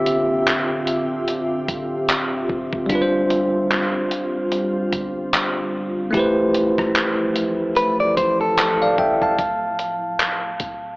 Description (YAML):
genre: contemporary R&B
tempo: 74 BPM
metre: 4/4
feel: swing 58% on 16ths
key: D dorian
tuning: A4 = 439 Hz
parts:
  - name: bell-like tine electric piano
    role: accompaniment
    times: 0.0-11.0 s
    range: D3 to A5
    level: -20 LUFS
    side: equal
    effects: fast stereo tremolo
  - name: glassy FM pad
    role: sustained chords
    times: 0.0-9.4 s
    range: D3 to E5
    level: -28 LUFS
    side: equal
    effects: ensemble chorus, built-in reverb
  - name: long sustained 808-style bass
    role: bass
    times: 0.0-11.0 s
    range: D1 to A1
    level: -39 LUFS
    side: equal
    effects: none
  - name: dusty soul sampler-style drum kit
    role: drums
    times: 0.1-10.8 s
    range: handclaps, hi-hat, kick drum, rim click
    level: -23 LUFS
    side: equal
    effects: vintage 12-bit sampler grit
  - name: direct-recorded clean electric guitar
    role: arpeggios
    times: 7.8-9.3 s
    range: A4 to D5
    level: -19 LUFS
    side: equal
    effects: analog delay
room: moderate spring reverb, RT60 2.5 s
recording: cassette tape, AM radio sound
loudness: -18 LUFS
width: side -24 dB against mid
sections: 0.0-9.4 A section; 9.4-11.0 B section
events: none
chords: 0.0 Dm11; 2.9 G7sus4; 6.1 Fmaj9#11/A; 9.4 Csus4 (rootless)